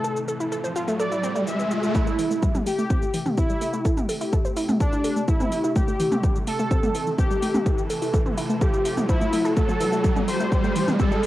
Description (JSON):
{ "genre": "melodic techno", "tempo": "126 BPM", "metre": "4/4", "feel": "straight", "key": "A minor", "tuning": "A4 = 436 Hz", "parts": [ { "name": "analog synth brass", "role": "melody", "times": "0.0-11.3 s", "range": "D4 to E5", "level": "-27 LUFS", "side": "equal", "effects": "chorus, cassette tape, tape echo" }, { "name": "evolving wavetable pad", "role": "sustained chords", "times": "0.0-11.3 s", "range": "C3 to A5", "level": "-33 LUFS", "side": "left 1 dB", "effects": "chorus, built-in reverb, phaser, sidechain pumping" }, { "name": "wide unison pluck", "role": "arpeggios", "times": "0.0-11.3 s", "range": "E3 to C5", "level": "-28 LUFS", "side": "equal", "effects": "sidechain pumping, analog delay" }, { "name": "bowed-like drone", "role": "drone", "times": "0.0-2.0 s", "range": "A2 to E3", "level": "-45 LUFS", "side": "left 1 dB", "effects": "none" }, { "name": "house drum kit", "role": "drums", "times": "0.0-11.3 s", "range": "hi-hat, shaker, toms", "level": "-31 LUFS", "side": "equal", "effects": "cassette tape" }, { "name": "riser", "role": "sound effects", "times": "0.1-11.3 s", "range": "none", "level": "-30 LUFS", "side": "right 1 dB", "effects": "none" }, { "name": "electronic kick drum", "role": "drums", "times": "1.9-11.1 s", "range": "none", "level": "-22 LUFS", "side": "equal", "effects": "cassette tape" } ], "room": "light reverb", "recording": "home recording on cassette", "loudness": "-20 LUFS", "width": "side -15 dB against mid", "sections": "0.0-1.9 A section; 1.9-11.3 B section", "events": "filter sweep on ambient pad 0.0-1.9; riser 0.1-1.9, 1.9-11.3; build-up 1.9-11.3; filter sweep on synth arpeggio sound 1.9-11.3", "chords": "0.0 F/A (rootless); 1.9 Am7; 9.6 F", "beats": "| 0.04 0.52 1.00 1.47 | 1.95 2.42 2.90 3.38 | 3.85 4.33 4.80 5.28 | 5.76 6.23 6.71 7.19 | 7.66 8.14 8.62 9.09 | 9.57 10.04 10.52 11.00" }